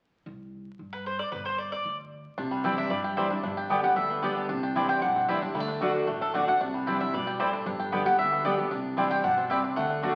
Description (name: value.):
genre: bluegrass.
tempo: 227 BPM.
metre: 4/4.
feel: straight.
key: unclear.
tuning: A4 = 442 Hz.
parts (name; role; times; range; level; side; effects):
upright bass; bass; 0.3-10.2 s; G1 to G2; -45 LUFS; equal; none.
mandolin; melody; 0.9-10.2 s; A4 to G5; -31 LUFS; equal; none.
bluegrass banjo; melody; 2.4-10.2 s; G3 to G4; -36 LUFS; equal; none.
picked steel-string acoustic guitar; accompaniment; 2.4-10.2 s; G2 to G4; -33 LUFS; equal; none.
mandolin; stabs; 2.6-10.1 s; A3 to G5; -33 LUFS; equal; none.
room: wet large studio reverb, RT60 1.4 s.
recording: very old 78 rpm record, vinyl crackle.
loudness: -28 LUFS.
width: mono.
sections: 0.3-2.4 A section; 2.4-10.2 B section.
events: none.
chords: 0.3 C5; 1.3 G5; 2.4 Cadd9; 3.4 G; 4.5 Cadd9; 5.5 D; 6.6 Cadd9; 7.7 G; 8.7 Cadd9.